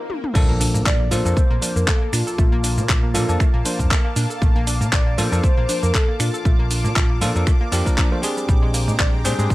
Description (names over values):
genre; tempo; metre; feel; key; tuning
nu-disco, nu disco; 118 BPM; 4/4; swing 55% on 16ths; Bb major; A4 = 440 Hz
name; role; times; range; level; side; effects
swell and impact; sound effects; 0.0-2.4 s; none; -31 LUFS; left 1 dB; none
pop drum kit; drums; 0.1-9.5 s; crash cymbal, finger snaps, handclaps, hi-hat, shaker, toms; -24 LUFS; equal; none
bell-like tine electric piano; accompaniment; 0.3-9.5 s; F3 to C5; -25 LUFS; equal; vintage 12-bit sampler grit, sidechain pumping, tape echo
analog pluck; arpeggios; 0.3-9.5 s; G3 to Bb4; -31 LUFS; right 4 dB; chorus, sidechain pumping, analog delay
lush unison pad; sustained chords; 0.7-9.5 s; Bb3 to D6; -31 LUFS; left 1 dB; chorus, phaser, sidechain pumping
hollow-body short-scale fingered electric bass; bass; 0.4-9.5 s; Bb1 to Bb2; -21 LUFS; equal; tube saturation
electronic kick drum; drums; 0.4-9.5 s; none; -18 LUFS; equal; none
soft octave-layered synth lead; melody; 0.9-9.5 s; F4 to D5; -28 LUFS; left 1 dB; chorus, phaser, analog delay
room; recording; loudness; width
little or no reverb; none; -16 LUFS; side -18 dB against mid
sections
0.4-9.5 A section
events
break 0.0-0.4; swell 0.0-0.4; drum fill 0.1; drop 0.4-9.5; impact 0.4-2.4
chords
0.4 Bbmaj7; 8.2 Bb13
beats
| 0.35 0.86 1.37 1.88 | 2.38 2.89 3.40 3.91 | 4.42 4.93 5.43 5.94 | 6.45 6.96 7.47 7.98 | 8.49 8.99 9.50